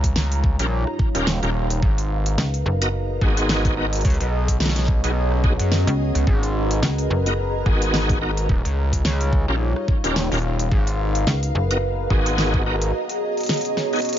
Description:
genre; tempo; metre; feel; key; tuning
glitch hop; 108 BPM; 4/4; swing 57% on 16ths; G# dorian; A4 = 439 Hz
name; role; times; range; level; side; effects
dark analog pad; sustained chords; 0.0-14.2 s; G3 to C#5; -30 LUFS; equal; chorus, phaser, sidechain pumping
gritty driven synth bass; bass; 0.0-12.9 s; D#1 to F#2; -22 LUFS; equal; overdrive
electronic kick drum; drums; 0.0-12.6 s; none; -20 LUFS; equal; none
pop drum kit; drums; 0.0-14.2 s; hi-hat, rim click, snare drum; -25 LUFS; equal; none
ethereal airy pad; texture; 0.0-14.2 s; C#4 to A#5; -28 LUFS; equal; ensemble chorus, built-in reverb, sidechain pumping
bright tonewheel organ; stabs; 0.6-14.0 s; B3 to A#4; -26 LUFS; equal; overdrive, chorus vibrato, fast rotary speaker, vintage 12-bit sampler grit, sidechain pumping, digital delay
slap-like FM bass; bass; 2.4-7.6, 11.3-12.1 s; F#1 to C#2; -22 LUFS; equal; none
room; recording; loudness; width
little or no reverb; nothing above 7.5 kHz; -18 LUFS; side -10 dB against mid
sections
0.0-14.2 A section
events
break 12.9-14.2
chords
0.0 D#9; 1.8 G#m9; 4.0 C#7sus4; 6.3 G#m9; 8.5 D#9; 10.7 G#m9; 12.9 C#7sus4

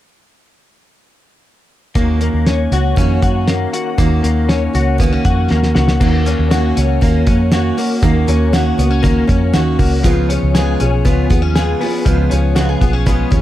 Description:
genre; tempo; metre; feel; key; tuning
jangly indie pop; 119 BPM; 4/4; straight; unclear; A4 = 440 Hz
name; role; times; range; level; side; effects
picked steel-string acoustic guitar; accompaniment; 2.0-13.4 s; C#3 to G#4; -19 LUFS; right 6 dB; none
direct-recorded clean electric guitar; arpeggios; 2.0-13.4 s; E#3 to G#4; -18 LUFS; left 6 dB; ensemble chorus
vintage muted picked electric bass; bass; 2.0-13.4 s; B1 to F#2; -16 LUFS; equal; none
cloth-damped thuddy drum kit; drums; 2.0-13.4 s; crash cymbal, hi-hat, kick drum, snare drum; -17 LUFS; equal; none
room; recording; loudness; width
light reverb; dark, warm production; -12 LUFS; side -14 dB against mid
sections
2.0-6.0 A section; 6.0-13.4 B section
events
drum fill 5.5-6.0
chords
2.0 D#m7; 10.0 C#7

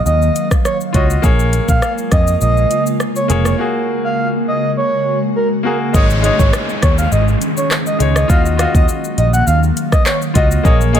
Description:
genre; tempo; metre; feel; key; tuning
dancehall; 102 BPM; 4/4; straight; unclear; A4 = 440 Hz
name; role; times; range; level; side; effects
bright concert grand piano; accompaniment; 0.0-11.0 s; Ab3 to Eb5; -21 LUFS; left 3 dB; none
ethereal airy pad; sustained chords; 0.0-11.0 s; Db3 to F5; -21 LUFS; equal; ensemble chorus, built-in reverb, sidechain pumping
breathy flute-like synth lead; melody; 0.1-11.0 s; Bb4 to Gb5; -19 LUFS; right 2 dB; chorus, tape echo
picked electric bass; bass; 0.1-11.0 s; F1 to F2; -15 LUFS; equal; none
afro-pop drum kit; drums; 0.1-11.0 s; handclaps, hi-hat, kick drum, rim click, shaker; -15 LUFS; equal; none
downlifter; sound effects; 5.9-10.7 s; none; -27 LUFS; equal; none
room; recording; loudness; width
digital ambience; none; -12 LUFS; side -9 dB against mid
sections
0.0-5.9 A section; 5.9-11.0 B section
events
break 3.6-5.9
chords
0.0 Ebmadd9; 1.2 Bbm7; 3.6 Gbadd9; 5.9 Absus4; 8.3 Ebmadd9

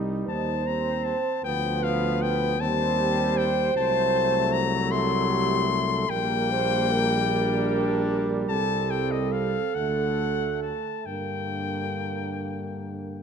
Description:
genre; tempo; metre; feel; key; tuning
classical, hymn-like piece for brass band; 43-52 BPM (dotted quarters); 6/8; rubato; G minor; A4 = 440 Hz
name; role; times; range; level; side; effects
mellow French horn section; second line; 0.0-13.1 s; Eb4 to C5; -28 LUFS; right 5 dB; none
clear trombone section; accompaniment; 0.0-13.2 s; A3 to Eb4; -34 LUFS; left 2 dB; none
warm trombone; accompaniment; 0.0-13.2 s; D3 to G3; -32 LUFS; right 3 dB; none
mellow tuba; bass; 0.0-13.2 s; Bb1 to G2; -29 LUFS; equal; none
warm cornet; melody; 0.3-13.2 s; Eb5 to C6; -28 LUFS; left 10 dB; none
room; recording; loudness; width
moderate recital hall reverb, RT60 1.4 s; close, detailed microphones; -23 LUFS; side -7 dB against mid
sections
0.0-13.2 A section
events
none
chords
0.0 Cm; 1.4 Bdim/D; 2.6 Cm/Eb; 3.8 F#dim/C; 6.1 Gm/Bb; 8.5 C5; 9.8 D; 11.1 Gm

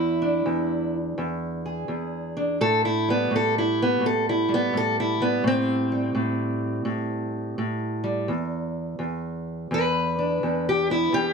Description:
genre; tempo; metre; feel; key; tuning
acoustic country blues, solo or duo; 84 BPM; 4/4; swing 66% on 8ths; unclear; A4 = 440 Hz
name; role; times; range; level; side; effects
fingerpicked steel-string acoustic guitar; solo; 0.0-11.3 s; E2 to B4; -22 LUFS; equal; none
room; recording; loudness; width
moderate booth ambience, RT60 0.2 s; none; -22 LUFS; side -5 dB against mid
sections
0.0-11.3 A section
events
steel-string acoustic guitar solo 0.0-11.3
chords
0.0 E7; 2.6 Emadd11/A; 8.3 E5

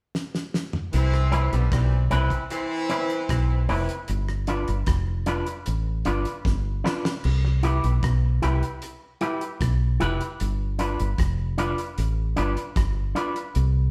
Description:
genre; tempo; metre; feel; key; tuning
roots reggae; 76 BPM; 4/4; straight; C major; A4 = 437 Hz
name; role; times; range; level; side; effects
damped 70s drum kit; drums; 0.1-13.7 s; crash cymbal, hi-hat, kick drum, rim click, snare drum, toms; -32 LUFS; equal; tape echo
warm horn section; second line; 0.9-3.6 s; E3 to E4; -31 LUFS; equal; none
fingered electric bass; bass; 0.9-13.9 s; F1 to C2; -25 LUFS; equal; none
electric guitar with an envelope filter; accompaniment; 1.3-13.4 s; C4 to B4; -31 LUFS; equal; none
room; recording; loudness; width
wet stone room reverb, RT60 1.1 s; band playing live in one room; -25 LUFS; mono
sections
0.9-7.2 A section; 7.2-13.9 B section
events
drum fill 0.1-0.9, 6.4-7.2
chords
0.0 N.C.; 0.9 Cmaj7; 4.1 G7; 7.2 Cmaj7; 10.4 G7

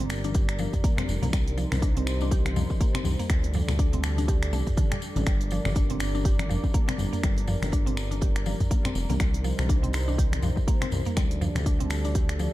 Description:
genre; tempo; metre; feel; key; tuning
afro house; 122 BPM; 4/4; swing 58% on 16ths; G minor; A4 = 437 Hz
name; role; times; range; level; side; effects
dark analog pad; sustained chords; 0.0-12.5 s; G3 to D5; -35 LUFS; equal; chorus, sidechain pumping
mallet-like synth pluck; arpeggios; 0.0-12.5 s; D3 to G4; -34 LUFS; equal; chorus, sidechain pumping, digital delay
smooth synth bass; bass; 0.0-12.5 s; F1 to D2; -28 LUFS; equal; sidechain pumping
house drum kit; drums; 0.0-12.4 s; finger snaps, hi-hat, toms; -33 LUFS; equal; none
congas; percussion; 0.0-12.5 s; none; -34 LUFS; left 2 dB; none
tambourine; percussion; 0.1-12.5 s; none; -44 LUFS; left 4 dB; none
electronic kick drum; drums; 0.3-12.3 s; none; -25 LUFS; equal; none
room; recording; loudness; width
little or no reverb; dark, warm production; -23 LUFS; side -16 dB against mid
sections
0.0-12.5 A section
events
none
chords
0.0 Gm; 1.3 Cm7; 3.3 Dsus4; 5.3 Gm; 9.2 Cm7; 11.2 Dsus4

